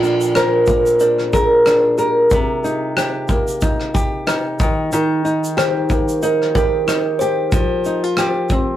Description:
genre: acoustic pop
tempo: 92 BPM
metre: 4/4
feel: swing 55% on 16ths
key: Bb mixolydian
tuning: A4 = 445 Hz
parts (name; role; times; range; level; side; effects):
- kalimba; melody; 0.0-8.8 s; Eb4 to C5; -20 LUFS; right 2 dB; none
- nylon-string guitar; accompaniment; 0.0-8.8 s; Bb2 to Bb4; -17 LUFS; equal; none
- loose indie drum kit; drums; 0.0-8.7 s; kick drum, rim click, shaker; -20 LUFS; equal; none
room: light reverb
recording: rough rehearsal-room recording, warm saturation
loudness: -14 LUFS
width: side -12 dB against mid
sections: 0.0-8.8 A section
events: none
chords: 0.0 Bb; 2.3 Cm7; 4.6 Eb; 7.5 Fsus2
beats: 0.35 1.01 1.66 | 2.31 2.96 3.61 4.26 | 4.92 5.57 6.22 6.87 | 7.52 8.18

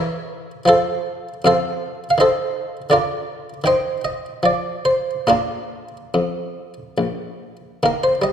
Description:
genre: classical, baroque-style suite movement for harpsichord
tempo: 68-83 BPM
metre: 3/4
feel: rubato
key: Bb major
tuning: A4 = 440 Hz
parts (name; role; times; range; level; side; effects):
- buff-stop harpsichord; solo; 0.0-8.3 s; Bb1 to G5; -18 LUFS; equal; none
room: wet scoring stage reverb, RT60 2.1 s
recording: recorded in a church or concert hall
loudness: -17 LUFS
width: side -8 dB against mid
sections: 0.0-7.8 A section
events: none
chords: 0.0 Bbdim/Fb; 0.7 F; 2.2 Adim/Eb; 2.9 Bb/D; 3.6 Cm/Eb; 4.4 N.C.; 5.3 Bb; 7.8 Eb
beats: | 0.65 1.44 2.17 | 2.90 3.64 4.41 | 5.26 6.13 6.98 | 7.81

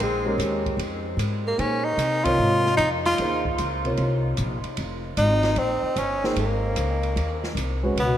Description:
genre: modal jazz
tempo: 150 BPM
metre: 4/4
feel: swing 66% on 8ths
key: Bb dorian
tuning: A4 = 438 Hz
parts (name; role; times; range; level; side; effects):
- bright tenor saxophone; melody; 0.0-8.2 s; Ab3 to F4; -24 LUFS; equal; none
- upright bass; bass; 0.0-8.2 s; F1 to C3; -27 LUFS; equal; none
- open jazz drum kit; drums; 0.0-8.1 s; hi-hat, kick drum, ride cymbal, snare drum; -34 LUFS; right 1 dB; none
- dark grand piano; accompaniment; 0.3-8.0 s; C3 to Db5; -28 LUFS; equal; none
- dark bass clarinet; second line; 8.0-8.2 s; B2; -24 LUFS; left 1 dB; none
room: wet cathedral reverb, RT60 6.8 s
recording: in a vast, echoing space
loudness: -21 LUFS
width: side -11 dB against mid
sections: 0.0-8.0 A section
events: band accent 2.2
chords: 0.0 Bb9sus4; 6.4 Abadd9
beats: 0.39 0.79 1.19 | 1.58 1.98 2.38 2.78 | 3.18 3.58 3.98 4.38 | 4.78 5.18 5.58 5.98 | 6.38 6.77 7.17 7.57 | 7.97

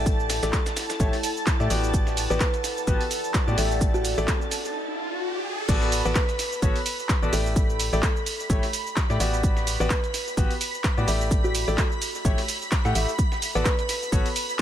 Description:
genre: piano house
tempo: 128 BPM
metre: 4/4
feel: swing 56% on 16ths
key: unclear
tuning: A4 = 438 Hz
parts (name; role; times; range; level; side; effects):
- analog string pad; sustained chords; 0.0-14.6 s; A5 to B6; -33 LUFS; right 3 dB; ensemble chorus, sidechain pumping
- bright concert grand piano; riff; 0.0-14.3 s; A3 to F#5; -30 LUFS; left 2 dB; sidechain pumping, ping-pong delay
- organ-like FM bass; bass; 0.0-14.2 s; A1 to A2; -27 LUFS; equal; sidechain pumping
- warbly tape-like pad; texture; 0.0-4.8 s; E4 to F#5; -35 LUFS; equal; chorus, built-in reverb, phaser, sidechain pumping
- dusty soul sampler-style drum kit; drums; 0.1-14.6 s; hi-hat, shaker, snare drum; -36 LUFS; right 2 dB; sidechain pumping on hats, high-pass filter on hats, sidechain pumping on perc, high-pass filter on perc, high-pass filter on snare, high-pass filter on room
- electronic kick drum; drums; 0.1-14.6 s; none; -24 LUFS; equal; none
- punchy analog drum machine; drums; 0.1-14.6 s; crash cymbal, handclaps, hi-hat, shaker; -30 LUFS; right 1 dB; none
- buzzing kalimba; melody; 0.4-13.7 s; F#4 to B4; -33 LUFS; equal; ping-pong delay
- riser; sound effects; 3.7-5.7 s; none; -34 LUFS; left 1 dB; none
room: digital ambience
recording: none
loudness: -22 LUFS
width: side -11 dB against mid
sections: 0.0-5.7 A section; 5.7-14.6 B section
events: riser 3.7-5.7; break 4.7-5.7; drop 5.7-14.6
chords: 0.0 A7sus4; 1.7 Gmaj7/A; 3.8 A7sus4; 5.7 Bm7/A; 7.6 A7sus4; 9.2 Gmaj7/A; 11.3 A7sus4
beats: | 0.06 0.53 1.00 1.47 | 1.94 2.40 2.87 3.34 | 3.81 4.28 4.75 5.22 | 5.69 6.16 6.62 7.09 | 7.56 8.03 8.50 8.97 | 9.44 9.90 10.37 10.84 | 11.31 11.78 12.25 12.72 | 13.19 13.65 14.12 14.59

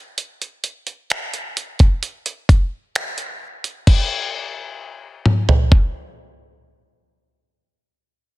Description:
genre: R&B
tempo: 65 BPM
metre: 4/4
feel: straight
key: none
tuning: none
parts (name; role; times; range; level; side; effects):
- dusty soul sampler-style drum kit; drums; 0.2-5.9 s; crash cymbal, finger snaps, hi-hat, kick drum, toms; -16 LUFS; equal; soft clipping on snare
room: little or no reverb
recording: dense, heavily limited modern master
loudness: -17 LUFS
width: side -19 dB against mid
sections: 0.0-3.9 A section; 3.9-7.6 B section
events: none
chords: none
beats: | 0.17 1.10 2.02 2.94 | 3.87 4.79 5.71

